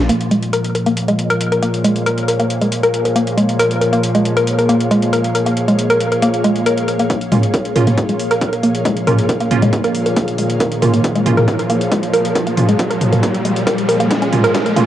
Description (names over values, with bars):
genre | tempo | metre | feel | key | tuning
driving peak-time techno | 137 BPM | 4/4 | straight | Bb minor | A4 = 440 Hz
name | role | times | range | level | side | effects
analog drone | drone | 0.0-14.9 s | Bb2 to F3 | -21 LUFS | equal | chorus, sidechain pumping
woody wave-folded pluck | riff | 0.1-14.8 s | Ab3 to Bb4 | -16 LUFS | equal | chorus, vintage 12-bit sampler grit, sidechain pumping, tape echo
techno drum kit | drums | 0.1-14.9 s | hi-hat, snare drum, toms | -21 LUFS | equal | none
ethereal airy pad | texture | 0.8-14.9 s | Bb3 to F5 | -22 LUFS | equal | ensemble chorus, built-in reverb, sidechain pumping
electronic kick drum | drums | 7.1-14.6 s | none | -20 LUFS | equal | high-pass filter on kick, high-pass filter on room
riser | sound effects | 8.9-14.9 s | none | -23 LUFS | equal | none
wavetable chord stab | stabs | 7.3-14.9 s | Bb3 to F4 | -23 LUFS | right 7 dB | phaser, sidechain pumping, analog delay
room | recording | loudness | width
moderate lush hall reverb, RT60 2.3 s | home recording on cassette, high-pass filter | -13 LUFS | side -12 dB against mid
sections
0.1-7.1 A section; 7.1-14.9 B section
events
build-up 7.1-14.9; riser 8.9-14.9; drum fill 14.1-14.9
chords
0.1 Bbm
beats
| 0.09 0.53 0.97 1.41 | 1.84 2.28 2.72 3.16 | 3.60 4.03 4.47 4.91 | 5.35 5.79 6.22 6.66 | 7.10 7.54 7.98 8.41 | 8.85 9.29 9.73 10.16 | 10.60 11.04 11.48 11.92 | 12.36 12.79 13.23 13.67 | 14.11 14.54